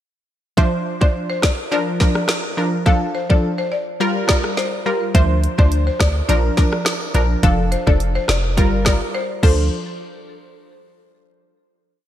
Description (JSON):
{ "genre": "dancehall", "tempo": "105 BPM", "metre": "4/4", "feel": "straight", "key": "D minor", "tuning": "A4 = 440 Hz", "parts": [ { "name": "buzzing marimba with medium hard mallets", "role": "melody", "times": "0.6-9.7 s", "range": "A4 to F5", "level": "-25 LUFS", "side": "left 1 dB", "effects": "digital delay" }, { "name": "analog pluck", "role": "accompaniment", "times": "0.6-9.7 s", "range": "F3 to C5", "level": "-21 LUFS", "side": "equal", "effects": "chorus" }, { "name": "island pop drum kit", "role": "drums", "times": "0.6-9.6 s", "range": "crash cymbal, hi-hat, kick drum, rim click, snare drum", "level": "-18 LUFS", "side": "equal", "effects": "gated reverb" }, { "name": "warm 808-style bass", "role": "bass", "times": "5.1-9.7 s", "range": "F1 to D2", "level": "-18 LUFS", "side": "equal", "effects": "none" } ], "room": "light reverb", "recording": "bright 1980s-style digital production", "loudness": "-16 LUFS", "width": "side -11 dB against mid", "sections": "0.6-9.7 verse; 9.7-12.0 final hit", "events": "silent gap 9.1-9.7", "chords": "0.6 Dm7; 1.7 Bb; 2.9 F6; 4.0 Gm7; 5.1 Dm7; 6.3 Bb; 7.4 F6; 8.6 Gm7; 9.4 Dm7; 9.7 N.C.", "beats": "| 0.57 1.15 1.72 2.29 | 2.86 3.43 4.00 4.58 | 5.15 5.72 6.29 6.86 | 7.43 8.00 8.57 9.15" }